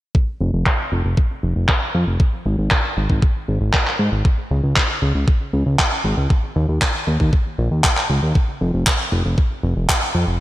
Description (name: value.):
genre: italo disco.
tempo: 117 BPM.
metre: 4/4.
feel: straight.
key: unclear.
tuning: A4 = 440 Hz.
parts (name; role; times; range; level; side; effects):
electronic kick drum; drums; 0.1-10.0 s; none; -17 LUFS; equal; none.
fat analog bass; bass; 0.4-10.4 s; F1 to Ab2; -19 LUFS; equal; tube saturation.
handclaps; drums; 0.7-10.0 s; none; -21 LUFS; equal; low-pass filter on snare, low-pass filter on room.
room: light reverb.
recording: bright 1980s-style digital production.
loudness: -16 LUFS.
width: side -15 dB against mid.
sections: 0.1-10.4 A section.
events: none.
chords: none.